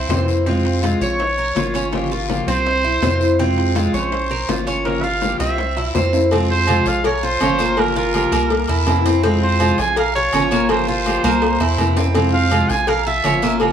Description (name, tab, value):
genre	latin, Cuban son and guajira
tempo	164 BPM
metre	4/4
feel	straight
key	F harmonic minor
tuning	A4 = 440 Hz
part	warm trumpet	melody	0.0-13.6 s	Bb4 to Ab5	-21 LUFS	right 2 dB	none
part	Cuban tres	arpeggios	0.0-13.7 s	Bb3 to Db5	-22 LUFS	right 2 dB	analog delay
part	rubbery square bass	bass	0.0-13.7 s	G1 to F2	-22 LUFS	equal	none
part	picked old ladder-braced acoustic guitar	accompaniment	0.1-13.7 s	C3 to G4	-22 LUFS	left 3 dB	none
part	bongos and cowbell	percussion	0.1-13.7 s	none	-26 LUFS	left 4 dB	none
part	guiro	percussion	0.1-13.7 s	none	-32 LUFS	left 7 dB	none
part	timbales and agogo bells	percussion	0.1-13.7 s	none	-26 LUFS	right 9 dB	none
room	moderate studio reverb, RT60 0.8 s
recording	small room ambience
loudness	-15 LUFS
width	side -8 dB against mid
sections	0.0-6.3 A section; 6.3-13.7 B section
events	drum fill 5.8-6.3, 11.2-12.2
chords	0.5 Fm; 1.2 Bbm; 1.9 Gm7b5; 2.7 C7; 3.4 Fm; 4.1 Bbm; 4.9 Gm7b5; 5.6 C7; 6.3 Fm; 7.0 Bbm; 7.8 Gm7b5; 8.5 C7; 9.2 Fm; 10.0 Bbm; 10.7 Gm7b5; 11.4 C7; 12.2 Fm; 12.9 Bbm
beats	0.10 | 0.47 0.83 1.20 1.56 | 1.93 2.29 2.66 3.03 | 3.39 3.76 4.12 4.49 | 4.86 5.22 5.59 5.95 | 6.32 6.68 7.05 7.41 | 7.78 8.14 8.51 8.87 | 9.24 9.60 9.97 10.33 | 10.70 11.06 11.43 11.79 | 12.15 12.52 12.88 13.25 | 13.61